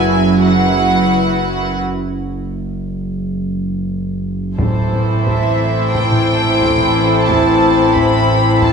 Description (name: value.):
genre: cinematic, suspense film score.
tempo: 89 BPM.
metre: 4/4.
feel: straight.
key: A minor from 4.6 s.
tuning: A4 = 440 Hz.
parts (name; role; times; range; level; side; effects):
clear studio violin section; melody; 0.0-8.7 s; E5 to B5; -20 LUFS; left 1 dB; none.
warm studio violin section; second line; 0.0-8.7 s; F#4 to C5; -21 LUFS; left 2 dB; none.
warm studio viola section; accompaniment; 0.0-8.7 s; E3 to E4; -17 LUFS; right 1 dB; none.
rich studio double bass section; bass; 0.0-8.7 s; F#1 to A1; -21 LUFS; right 3 dB; none.
warm studio cello section; bass; 0.0-8.7 s; F#2 to A2; -20 LUFS; right 3 dB; none.
analog drone; drone; 0.0-8.7 s; F#1 to A1; -22 LUFS; right 1 dB; chorus.
warm French horn section; sustained chords; 4.6-8.7 s; E3 to C4; -19 LUFS; left 3 dB; none.
taiko ensemble; drums; 4.6-8.7 s; none; -23 LUFS; equal; none.
timpani; percussion; 4.6-5.5 s; A2; -23 LUFS; left 1 dB; none.
room: wet scoring stage reverb, RT60 1.9 s.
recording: none.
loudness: -13 LUFS.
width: side -6 dB against mid.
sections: 0.0-4.6 A section; 4.6-8.7 B section.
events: break 1.8-4.6.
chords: 0.0 Esus2/F#; 4.6 Am.